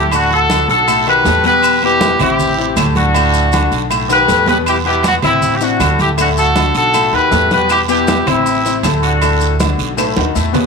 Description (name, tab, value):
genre	latin, salsa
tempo	158 BPM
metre	4/4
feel	straight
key	E minor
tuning	A4 = 440 Hz
part	bright horn section	melody	0.0-9.6 s	B3 to B4	-14 LUFS	equal	none
part	bright concert grand piano	accompaniment	0.0-10.7 s	A2 to B4	-18 LUFS	left 12 dB	none
part	upright bass	bass	0.0-10.7 s	A1 to E2	-19 LUFS	right 2 dB	none
part	agogo bells and timbales	percussion	0.1-10.6 s	none	-21 LUFS	right 18 dB	none
part	claves	percussion	0.1-10.2 s	none	-27 LUFS	left 16 dB	none
part	congas	percussion	0.1-10.6 s	none	-22 LUFS	right 1 dB	none
part	guiro	percussion	0.1-10.7 s	none	-28 LUFS	right 18 dB	none
part	maracas	percussion	0.1-10.7 s	none	-28 LUFS	left 14 dB	none
room	light reverb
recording	1960s-style stereo with parts hard left and right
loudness	-11 LUFS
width	side -4 dB against mid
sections	0.0-10.7 A section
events	drum fill 4.1-4.7, 10.0-10.7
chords	0.1 D; 0.9 B7; 1.6 Em; 2.4 Am; 3.2 D; 3.9 B7; 4.7 E5; 5.4 Am; 6.2 D; 6.9 B7; 7.7 Em; 8.5 Am; 9.2 D; 10.0 B7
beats	| 0.12 0.50 0.88 1.26 | 1.64 2.02 2.39 2.77 | 3.15 3.53 3.91 4.29 | 4.67 5.05 5.43 5.80 | 6.18 6.56 6.94 7.32 | 7.70 8.08 8.46 8.84 | 9.22 9.60 9.97 10.35